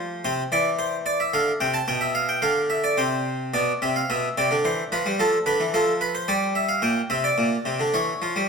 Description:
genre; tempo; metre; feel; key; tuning
classical, baroque-style two-part invention for harpsichord; 109 BPM; 3/4; straight; unclear; A4 = 439 Hz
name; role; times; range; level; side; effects
harpsichord; solo; 0.0-8.5 s; Bb2 to A5; -21 LUFS; equal; none
room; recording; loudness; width
wet recital hall reverb, RT60 1.4 s; minimal, uncompressed stereo recording; -21 LUFS; side -5 dB against mid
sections
0.0-3.5 A section; 3.5-8.5 B section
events
none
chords
0.2 C; 1.3 Dm; 1.9 G7/B; 3.0 N.C.; 3.5 Bdim; 4.6 C/E; 5.2 Dm; 6.3 G5; 6.8 Gm/Bb; 7.9 Em6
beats
| 0.24 0.79 1.34 | 1.88 2.43 2.98 | 3.54 4.10 4.65 | 5.19 5.74 6.28 | 6.83 7.38 7.94

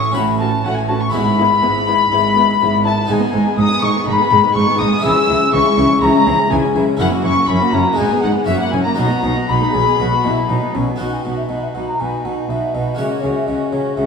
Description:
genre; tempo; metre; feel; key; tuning
classical, baroque-style concerto movement with solo episodes; 122 BPM; 4/4; straight; E major, B major from 3.1 s; A4 = 439 Hz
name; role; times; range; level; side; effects
mellow baroque flute; melody; 0.0-14.1 s; C#5 to E6; -20 LUFS; left 3 dB; none
warm chamber violin section; melody; 0.0-14.1 s; A#4 to E6; -20 LUFS; left 5 dB; none
harpsichord; accompaniment; 0.0-14.1 s; F#2 to D#5; -21 LUFS; left 3 dB; none
rich chamber double bass section; bass; 0.0-14.1 s; F#1 to C#2; -24 LUFS; right 3 dB; none
warm chamber cello section; bass; 0.0-14.1 s; F#2 to C#3; -22 LUFS; right 2 dB; none
dark chamber viola section; accompaniment; 0.1-14.1 s; E3 to D#4; -23 LUFS; right 3 dB; none
dark chamber violin section; second line; 0.2-14.1 s; C#4 to G#4; -24 LUFS; left 3 dB; none
room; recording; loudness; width
wet scoring stage reverb, RT60 1.8 s; studio ambience; -13 LUFS; side -5 dB against mid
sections
0.0-11.0 A section; 11.0-14.1 B section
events
none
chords
0.2 F#m/A; 1.1 E/G#; 3.1 G#m; 5.0 C#m; 7.0 F#7; 8.0 G#m; 8.5 F#7; 9.0 B; 13.0 F#/C#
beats
0.15 0.65 | 1.14 1.63 2.12 2.60 | 3.09 3.58 4.07 4.55 | 5.04 5.53 6.02 6.51 | 7.00 7.49 7.99 8.48 | 8.98 9.49 9.99 10.50 | 11.00 11.50 12.00 12.50 | 12.99 13.48 13.97

